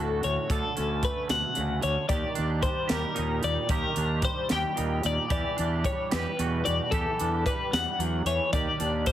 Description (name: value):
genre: math rock and midwest emo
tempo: 75 BPM (dotted quarters)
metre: 6/8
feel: straight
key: unclear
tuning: A4 = 438 Hz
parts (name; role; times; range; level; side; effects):
- twangy electric guitar; accompaniment; 0.0-9.1 s; A2 to A4; -33 LUFS; right 9 dB; ensemble chorus
- twelve-string electric guitar; arpeggios; 0.0-9.1 s; A4 to G5; -29 LUFS; left 4 dB; tremolo, plate reverb
- fuzz fingered electric bass; bass; 0.0-9.1 s; D2 to E2; -30 LUFS; equal; overdrive
- crisp fusion drum kit; drums; 0.2-9.1 s; hi-hat, kick drum, snare drum; -32 LUFS; equal; none
room: light reverb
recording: heavily compressed radio sound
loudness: -25 LUFS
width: side -12 dB against mid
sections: 0.0-9.1 A section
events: none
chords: 0.0 Dmaj7; 2.1 Ebmaj7; 5.3 Em9; 8.5 Ebmaj7